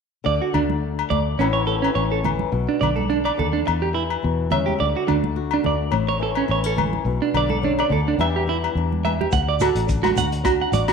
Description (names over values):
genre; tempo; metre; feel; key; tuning
highlife guitar band; 106 BPM; 4/4; swing 53% on 16ths; D major; A4 = 440 Hz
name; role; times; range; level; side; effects
flamenco guitar; accompaniment; 0.2-10.9 s; E2 to A4; -27 LUFS; left 10 dB; none
clean electric guitar; arpeggios; 0.3-10.9 s; C#4 to F#5; -22 LUFS; right 7 dB; slapback echo
fingered electric bass; bass; 0.3-10.9 s; A1 to E2; -24 LUFS; left 2 dB; none
agogo bells; percussion; 0.5-10.9 s; none; -28 LUFS; left 13 dB; none
congas; percussion; 0.5-10.9 s; none; -28 LUFS; right 7 dB; none
crunchy breakbeat drum kit; drums; 9.3-10.9 s; hi-hat, kick drum, rim click; -26 LUFS; left 2 dB; none
shekere; percussion; 9.3-10.9 s; none; -30 LUFS; right 4 dB; none
room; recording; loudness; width
moderate echo chamber reverb, RT60 1.7 s, small room ambience; 1960s-style stereo with parts hard left and right; -19 LUFS; side -6 dB against mid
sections
0.3-9.3 A section; 9.3-10.9 B section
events
none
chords
0.3 D5; 1.4 Aadd9; 2.5 Bm7; 3.7 Em7; 4.8 D; 5.9 Aadd9; 7.1 Bm7; 8.2 Em7; 9.3 D